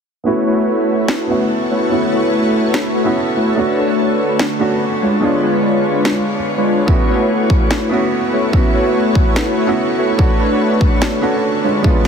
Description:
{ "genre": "future bass", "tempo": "145 BPM", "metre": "4/4", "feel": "half-time", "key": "A major", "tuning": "A4 = 440 Hz", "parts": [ { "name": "felt-muted upright piano", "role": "accompaniment", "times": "0.2-12.1 s", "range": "G#3 to C#5", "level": "-20 LUFS", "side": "right 3 dB", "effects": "sidechain pumping, low-pass filter, digital delay" }, { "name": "ethereal airy pad", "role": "sustained chords", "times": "0.8-12.1 s", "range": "D3 to C#5", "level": "-25 LUFS", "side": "left 2 dB", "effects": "ensemble chorus, built-in reverb, phaser, sidechain pumping" }, { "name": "soft supersaw", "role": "riff", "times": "0.3-12.1 s", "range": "G#3 to C#5", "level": "-16 LUFS", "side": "left 1 dB", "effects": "sidechain pumping, low-pass filter, digital delay" }, { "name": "electronic snare drum", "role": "drums", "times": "1.1-12.1 s", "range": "none", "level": "-24 LUFS", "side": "equal", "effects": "studio ambience" }, { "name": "electronic kick drum", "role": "drums", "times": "6.9-11.9 s", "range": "none", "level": "-14 LUFS", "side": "equal", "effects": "studio ambience" } ], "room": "moderate shimmer reverb, RT60 5.1 s", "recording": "heavily compressed radio sound", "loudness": "-13 LUFS", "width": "side -6 dB against mid", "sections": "0.3-12.1 A section", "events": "filter sweep on felt piano 0.3-12.1", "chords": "0.3 A69; 3.6 Bm9; 5.0 C#7b9; 6.9 A69; 10.2 Bm9" }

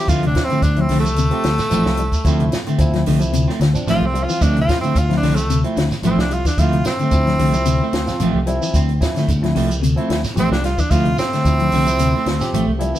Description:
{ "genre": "afrobeat", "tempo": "111 BPM", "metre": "4/4", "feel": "swing 53% on 16ths", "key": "D minor", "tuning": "A4 = 440 Hz", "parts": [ { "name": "edgy tenor saxophone", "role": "melody", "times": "0.0-12.8 s", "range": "A3 to G4", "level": "-21 LUFS", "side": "equal", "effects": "none" }, { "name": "barky tine electric piano", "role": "accompaniment", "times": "0.0-13.0 s", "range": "F3 to G4", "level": "-27 LUFS", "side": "right 1 dB", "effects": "overdrive" }, { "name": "clean electric guitar", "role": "arpeggios", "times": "0.0-13.0 s", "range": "C3 to G3", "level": "-22 LUFS", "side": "left 3 dB", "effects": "phaser" }, { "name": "electric guitar at the edge of break-up", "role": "stabs", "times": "0.1-13.0 s", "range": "F3 to C4", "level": "-24 LUFS", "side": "right 3 dB", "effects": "spring reverb" }, { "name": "fingered electric bass", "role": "bass", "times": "0.1-12.9 s", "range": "A1 to D2", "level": "-20 LUFS", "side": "equal", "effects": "none" }, { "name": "compact cocktail drum kit", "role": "drums", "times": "0.1-12.9 s", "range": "hi-hat, kick drum, snare drum", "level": "-22 LUFS", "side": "equal", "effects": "none" }, { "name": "shekere", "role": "percussion", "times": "0.1-13.0 s", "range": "none", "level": "-29 LUFS", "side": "right 3 dB", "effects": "none" } ], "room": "moderate stone room reverb, RT60 1.1 s", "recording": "band playing live in one room", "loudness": "-15 LUFS", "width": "side -12 dB against mid", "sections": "0.0-13.0 A section", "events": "tenor saxophone solo 0.0-13.0", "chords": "0.0 Dm7" }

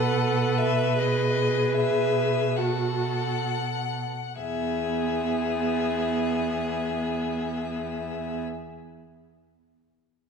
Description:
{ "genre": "classical, slow romantic movement for string quartet", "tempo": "free time", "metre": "none", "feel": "none", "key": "E major", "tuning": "A4 = 441 Hz", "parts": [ { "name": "rich violin", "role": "melody", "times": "0.0-8.4 s", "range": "D#5 to F#5", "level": "-30 LUFS", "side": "left 10 dB", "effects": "none" }, { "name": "warm violin", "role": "second line", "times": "0.0-8.4 s", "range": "G#4 to B4", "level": "-30 LUFS", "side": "left 1 dB", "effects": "none" }, { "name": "rich viola", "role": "accompaniment", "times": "0.0-8.4 s", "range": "B3 to A4", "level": "-29 LUFS", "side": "right 1 dB", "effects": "none" }, { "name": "rich cello", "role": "bass", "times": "0.0-8.4 s", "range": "E2 to B2", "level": "-30 LUFS", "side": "right 5 dB", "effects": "none" } ], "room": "wet concert hall reverb, RT60 2.1 s", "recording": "minimal, uncompressed stereo recording", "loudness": "-24 LUFS", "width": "side -6 dB against mid", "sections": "0.0-4.4 A section; 4.4-10.3 B section", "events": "slowing down 0.0-4.4", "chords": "0.0 B5; 4.4 E" }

